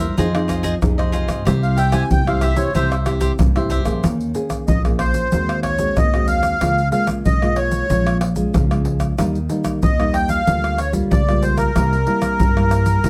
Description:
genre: samba and choro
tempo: 93 BPM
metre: 4/4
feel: straight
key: unclear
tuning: A4 = 440 Hz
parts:
  - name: cavaquinho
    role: accompaniment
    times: 0.0-4.0 s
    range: F4 to E5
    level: -28 LUFS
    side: equal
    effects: none
  - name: nylon-string guitar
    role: accompaniment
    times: 0.0-13.1 s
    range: G2 to Ab4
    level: -26 LUFS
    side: equal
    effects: none
  - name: upright bass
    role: bass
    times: 0.0-13.1 s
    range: Bb1 to G2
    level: -23 LUFS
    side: equal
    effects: none
  - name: tube shaker, surdo, pandeiro and tamborim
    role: percussion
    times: 0.2-13.1 s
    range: none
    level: -23 LUFS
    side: equal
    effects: none
  - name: accordion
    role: melody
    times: 1.6-13.1 s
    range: Bb4 to Ab5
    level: -23 LUFS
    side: equal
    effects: light tremolo tuning, plate reverb
room: light reverb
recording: close, detailed microphones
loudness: -18 LUFS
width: mono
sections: 0.0-4.0 A section; 4.0-13.1 B section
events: accordion solo 0.0-4.0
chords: 0.2 Fm7; 1.5 C; 4.0 Eb7sus4; 5.3 Ab7/Eb; 6.6 Db6; 7.9 Bbm7; 9.2 Eb; 10.5 Gm7/D; 11.8 C7

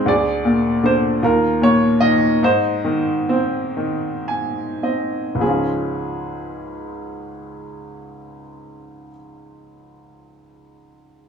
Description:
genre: classical, lyrical solo piano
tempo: 32-52 BPM (dotted quarters)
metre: 6/8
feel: rubato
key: Db major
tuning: A4 = 440 Hz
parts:
  - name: bright upright piano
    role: solo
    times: 0.0-11.3 s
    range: Db2 to Ab5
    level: -17 LUFS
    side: equal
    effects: none
room: moderate studio reverb, RT60 0.6 s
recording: small room reverb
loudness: -16 LUFS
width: side -6 dB against mid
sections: 0.1-5.4 A section; 5.4-8.9 B section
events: slowing down 0.1-5.4; upright piano fill 3.8-5.4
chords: 0.1 Bb7/D; 1.2 Ebsus2; 2.4 Ab; 5.4 Db

